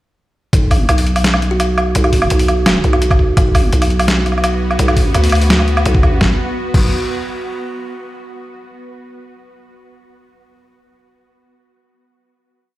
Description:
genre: half-time drum and bass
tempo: 169 BPM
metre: 4/4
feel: half-time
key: B minor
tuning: A4 = 440 Hz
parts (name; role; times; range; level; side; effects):
- growling 808-style bass; bass; 0.5-6.9 s; B1 to D2; -14 LUFS; equal; none
- boom bap sampler-style drum kit; drums; 0.5-6.8 s; crash cymbal, hi-hat, snare drum, woodblock; -17 LUFS; equal; none
- electronic kick drum; drums; 0.5-6.8 s; none; -13 LUFS; equal; none
- kalimba; melody; 1.5-3.2 s; F#4; -22 LUFS; right 3 dB; vintage 12-bit sampler grit, dub echo
- bowed-like drone; sustained chords; 3.9-6.4 s; B3 to B4; -24 LUFS; right 1 dB; built-in reverb, sidechain pumping
room: little or no reverb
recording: played on a big sound system in a bare room, stone room reverb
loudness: -12 LUFS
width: side -16 dB against mid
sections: 0.5-6.2 drop; 6.2-7.6 final chord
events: drop 0.5-6.2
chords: 0.5 Bm; 6.2 B5

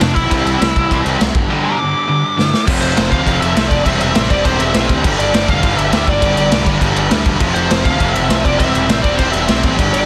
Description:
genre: punk rock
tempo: 202 BPM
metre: 4/4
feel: straight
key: unclear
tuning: A4 = 440 Hz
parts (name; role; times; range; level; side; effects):
- bluesy overdriven lead guitar; melody; 0.0-10.1 s; D4 to D6; -20 LUFS; equal; distortion
- crunchy overdriven guitar; riff; 0.0-10.1 s; F2 to C4; -24 LUFS; equal; none
- fuzz guitar; riff; 0.0-10.1 s; F2 to C4; -26 LUFS; equal; none
- sludgy distorted guitar; riff; 0.0-10.1 s; F2 to C4; -25 LUFS; equal; overdrive
- fuzz picked electric bass; bass; 0.0-10.1 s; E1 to F2; -23 LUFS; equal; overdrive
- raw garage drum kit; drums; 0.0-10.0 s; crash cymbal, kick drum, snare drum; -18 LUFS; equal; none
room: little or no reverb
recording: dense, heavily limited modern master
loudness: -14 LUFS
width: mono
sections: 0.0-2.7 A section; 2.7-10.1 B section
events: lead electric guitar solo 0.0-2.7; drum fill 2.4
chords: 0.3 C; 1.3 G5; 2.7 F5; 3.9 C/E; 5.0 G5; 7.4 F5; 8.6 C/E

